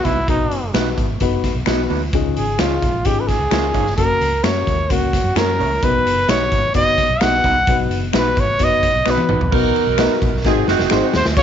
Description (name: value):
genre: uptempo 1960s-style soul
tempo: 130 BPM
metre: 4/4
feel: straight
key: unclear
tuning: A4 = 440 Hz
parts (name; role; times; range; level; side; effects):
- breathy trumpet; melody; 0.0-11.4 s; Eb4 to Gb5; -18 LUFS; equal; none
- dark upright piano; accompaniment; 0.0-11.4 s; Ab2 to F5; -22 LUFS; left 11 dB; none
- raw garage drum kit; drums; 0.0-11.4 s; crash cymbal, hi-hat, kick drum, ride cymbal, snare drum, toms; -21 LUFS; equal; none
- electric guitar through a small old amp; stabs; 0.1-11.0 s; Ab3 to Db5; -26 LUFS; right 12 dB; none
- vintage muted fingered electric bass; bass; 0.1-11.4 s; F1 to Gb2; -23 LUFS; right 1 dB; none
- finger snap; percussion; 0.7-11.0 s; none; -28 LUFS; left 12 dB; none
- warm saxophone section; second line; 9.5-11.1 s; C4 to Bb4; -19 LUFS; right 12 dB; tape echo
room: moderate spring reverb, RT60 1.8 s, small room ambience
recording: 1960s-style stereo with parts hard left and right, nothing above 7.6 kHz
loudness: -15 LUFS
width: side -9 dB against mid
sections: 0.0-9.5 A section; 9.5-11.4 B section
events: trumpet solo 0.0-9.5; drum fill 9.1-9.5, 10.4-11.4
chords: 0.0 Cb; 2.1 Dbadd9; 4.0 Gb; 5.8 Cb; 10.4 Ab7